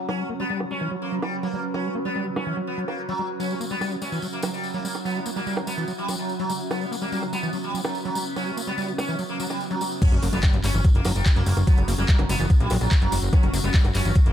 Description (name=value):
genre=psychedelic trance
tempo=145 BPM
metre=4/4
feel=straight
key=unclear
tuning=A4 = 439 Hz
part: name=overtone-sweeping drone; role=sustained chords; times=0.0-14.3 s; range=F#3 to B4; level=-34 LUFS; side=right 2 dB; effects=chorus, built-in reverb, sidechain pumping
part: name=granular cloud pad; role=texture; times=0.0-14.3 s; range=C#4 to F#5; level=-34 LUFS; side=equal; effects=built-in reverb, sidechain pumping
part: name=sitar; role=melody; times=0.1-14.3 s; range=F#3 to C#4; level=-31 LUFS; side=right 1 dB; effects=phaser, sidechain pumping, dub echo
part: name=overdriven acid bass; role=riff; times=0.1-14.2 s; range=E3 to A#3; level=-31 LUFS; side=moving between left 6 dB and right 5 dB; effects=distortion, auto-pan, sidechain pumping, tape echo
part: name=garage drum kit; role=drums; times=0.1-14.3 s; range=bongos, crash cymbal, handclaps, hi-hat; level=-32 LUFS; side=right 2 dB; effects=overdrive, low-pass filter on hats, studio ambience, low-pass filter on perc, low-pass filter on snare, low-pass filter on cymbals
part: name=tambourine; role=percussion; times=3.4-14.2 s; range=none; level=-36 LUFS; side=left 4 dB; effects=none
part: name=electronic kick drum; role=drums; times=10.0-14.2 s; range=none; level=-18 LUFS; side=equal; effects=overdrive, studio ambience
part: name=impact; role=sound effects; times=10.0-11.7 s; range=none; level=-30 LUFS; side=equal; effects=none
part: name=fat analog bass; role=bass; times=10.1-14.3 s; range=F#1 to A#1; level=-23 LUFS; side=equal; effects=none
room=light reverb, digital ambience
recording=none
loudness=-22 LUFS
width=side -10 dB against mid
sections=0.0-10.0 A section; 10.0-14.3 B section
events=filter sweep on acid bass 0.0-10.0; filter sweep on synth drone 0.0-10.0; drop 10.0-14.3; impact 10.0-11.7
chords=0.0 F#5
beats=| 0.09 0.50 0.91 1.33 | 1.74 2.16 2.57 2.98 | 3.40 3.81 4.22 4.64 | 5.05 5.47 5.88 6.29 | 6.71 7.12 7.54 7.95 | 8.36 8.78 9.19 9.60 | 10.02 10.43 10.85 11.26 | 11.67 12.09 12.50 12.91 | 13.33 13.74 14.16